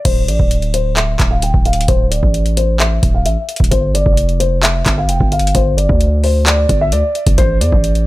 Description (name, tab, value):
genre	hip hop, trap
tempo	131 BPM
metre	4/4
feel	half-time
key	unclear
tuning	A4 = 440 Hz
part	dark concert grand piano	melody	0.0-8.0 s	C5 to G5	-18 LUFS	left 2 dB	low-pass filter, digital delay
part	distorted 808-style bass	bass	0.1-8.1 s	D1 to E2	-15 LUFS	equal	distortion
part	booming analog drum machine	drums	0.1-8.1 s	crash cymbal, handclaps, hi-hat, kick drum	-15 LUFS	equal	none
room	little or no reverb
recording	none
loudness	-11 LUFS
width	side -17 dB against mid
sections	0.1-8.1 A section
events	filter sweep on grand piano 0.1-7.4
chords	0.1 Dsus2; 3.7 G5; 7.4 A5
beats	| 0.05 0.51 0.97 1.43 | 1.88 2.34 2.80 3.26 | 3.72 4.17 4.63 5.09 | 5.55 6.01 6.46 6.92 | 7.38 7.84